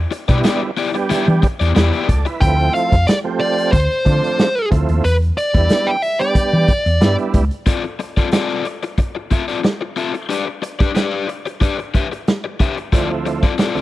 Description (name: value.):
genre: funk.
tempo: 91 BPM.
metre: 4/4.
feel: straight.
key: D dorian.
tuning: A4 = 440 Hz.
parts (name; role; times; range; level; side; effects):
hollow-body short-scale fingered electric bass; bass; 0.0-7.5 s; C#2 to E3; -16 LUFS; equal; none.
overdriven electric guitar; accompaniment; 0.1-2.3, 7.7-13.8 s; B3 to E5; -21 LUFS; left 6 dB; spring reverb.
raw garage drum kit; drums; 0.1-13.8 s; hi-hat, kick drum, snare drum; -17 LUFS; equal; none.
tonewheel organ; stabs; 0.3-7.4, 12.9-13.8 s; D2 to E5; -22 LUFS; right 4 dB; chorus vibrato.
fuzz lead guitar; melody; 2.4-7.1 s; B4 to G5; -18 LUFS; equal; distortion.
room: small room ambience.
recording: dry, close 1970s-style studio recording.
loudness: -15 LUFS.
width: side -16 dB against mid.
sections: 0.0-7.7 A section; 7.7-13.8 B section.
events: none.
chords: 0.0 Em7; 2.4 Dm7; 5.0 Em7; 7.7 Dm7; 10.3 Em7 (rootless); 12.9 Dm7.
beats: 0.45 1.10 1.76 | 2.42 3.07 3.73 4.38 | 5.04 5.70 6.36 7.01 | 7.67 8.33 8.99 9.64 | 10.30 10.96 11.61 12.27 | 12.93 13.58.